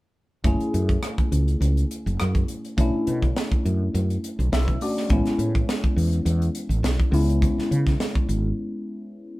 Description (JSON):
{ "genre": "electric jazz fusion", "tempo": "103 BPM", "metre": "4/4", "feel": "swing 53% on 16ths", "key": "F# minor", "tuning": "A4 = 444 Hz", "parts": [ { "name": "barky tine electric piano", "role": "accompaniment", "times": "0.4-9.4 s", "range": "G#3 to E5", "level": "-27 LUFS", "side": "left 1 dB", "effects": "phaser" }, { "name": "woody fretless electric bass", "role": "bass", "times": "0.4-8.5 s", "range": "F#1 to C#3", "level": "-22 LUFS", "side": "equal", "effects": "none" }, { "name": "crisp fusion drum kit", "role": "drums", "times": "0.4-8.4 s", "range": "hi-hat, kick drum, rim click, snare drum", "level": "-24 LUFS", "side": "equal", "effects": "none" } ], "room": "light reverb", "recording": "band playing live in one room", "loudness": "-20 LUFS", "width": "side -19 dB against mid", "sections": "0.4-9.4 A section", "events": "tine electric piano fill 4.2-5.1; break 8.6-9.4", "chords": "0.4 F#m9; 2.8 Bm11; 5.1 Amaj9; 7.1 C#m7", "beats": "| 0.44 1.03 1.61 2.19 | 2.78 3.36 3.94 4.52 | 5.11 5.69 6.27 6.85 | 7.43 8.00 8.58 9.16" }